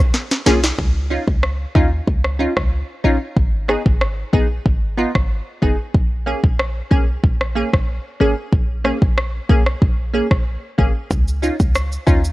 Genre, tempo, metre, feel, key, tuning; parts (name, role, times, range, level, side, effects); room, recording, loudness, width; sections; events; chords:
dancehall; 93 BPM; 4/4; straight; Bb phrygian; A4 = 440 Hz
short 808-style bass; bass; 0.0-12.3 s; Gb1 to Eb2; -20 LUFS; equal
afro-pop drum kit; drums; 0.1-12.3 s; hi-hat, kick drum, rim click, shaker, snare drum; -17 LUFS; equal
wavetable chord stab; accompaniment; 0.5-12.2 s; Bb3 to Ab4; -20 LUFS; equal
digital ambience; worn, warbling old tape, cassette tape, warbly pitch drift; -16 LUFS; side -18 dB against mid
0.8-12.3 A section
drum fill 0.1-0.8; break 0.8-11.1
0.0 Bbm7; 0.8 Dbadd9; 3.4 Abm; 5.9 Bbm7; 11.1 Dbadd9